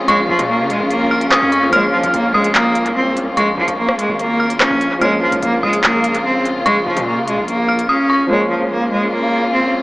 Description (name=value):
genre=hip hop, drill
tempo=146 BPM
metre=4/4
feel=half-time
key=Bb minor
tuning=A4 = 440 Hz
part: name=dark baby grand piano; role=accompaniment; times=0.0-9.8 s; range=F3 to Db4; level=-24 LUFS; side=equal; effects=analog delay
part: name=warm symphonic string section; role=sustained chords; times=0.0-9.8 s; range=Db3 to F4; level=-21 LUFS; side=left 1 dB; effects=none
part: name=distorted 808-style bass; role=bass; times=0.0-7.9 s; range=Ab1 to Db3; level=-28 LUFS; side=equal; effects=distortion
part: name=bright cello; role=melody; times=0.1-9.7 s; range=F3 to Db4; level=-16 LUFS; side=equal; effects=analog delay
part: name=dark detuned synth bell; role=second line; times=0.1-8.3 s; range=Db6 to F6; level=-20 LUFS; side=equal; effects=chorus, analog delay
part: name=drill drum kit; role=drums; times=0.1-7.9 s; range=handclaps, hi-hat, rim click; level=-19 LUFS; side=equal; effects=analog delay
room=moderate spring reverb, RT60 1.4 s, small room reverb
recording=echo-heavy mix, small speaker sound, faint mains hum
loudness=-13 LUFS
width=side -21 dB against mid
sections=0.0-8.3 A section; 8.3-9.8 A section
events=drums muted 7.9-8.3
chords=0.0 Bbm7